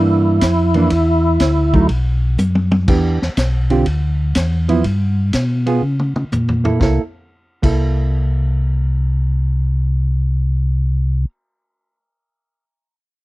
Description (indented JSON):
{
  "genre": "soul jazz organ trio",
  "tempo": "122 BPM",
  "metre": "4/4",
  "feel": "swing 68% on 8ths",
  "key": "C mixolydian",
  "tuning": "A4 = 440 Hz",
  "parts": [
    { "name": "overdriven tonewheel organ", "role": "melody", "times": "0.0-1.9 s", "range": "E4", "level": "-16 LUFS", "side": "right 1 dB", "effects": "slow rotary speaker, chorus vibrato" },
    { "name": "hollow-body jazz guitar", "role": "accompaniment", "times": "0.0-11.3 s", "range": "D3 to A4", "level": "-18 LUFS", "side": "right 4 dB", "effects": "none" },
    { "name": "mellow tonewheel organ", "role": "bass", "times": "0.0-11.3 s", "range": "B1 to Db3", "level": "-16 LUFS", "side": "equal", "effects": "chorus vibrato, slow rotary speaker" },
    { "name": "vintage drum kit", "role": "drums", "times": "0.4-7.7 s", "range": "crash cymbal, hi-hat, kick drum, ride cymbal, snare drum, toms", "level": "-20 LUFS", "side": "equal", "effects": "none" }
  ],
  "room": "little or no reverb",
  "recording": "dry, close 1970s-style studio recording",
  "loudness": "-14 LUFS",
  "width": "side -18 dB against mid",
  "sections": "0.0-2.9 A section; 2.9-6.8 B section; 6.8-10.7 C section",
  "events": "drum fill 2.4-2.9, 5.8-6.8",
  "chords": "0.0 C9 (rootless); 1.9 B5; 2.9 Em7; 3.9 Dmadd9; 4.8 G7; 5.8 Bbdim; 6.8 C6",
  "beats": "0.42 | 0.92 1.41 1.90 2.39 | 2.88 3.37 3.86 4.36 | 4.85 5.34 5.83 6.32 | 6.81 7.30 7.80 8.29 | 8.78 9.27 9.76 10.25"
}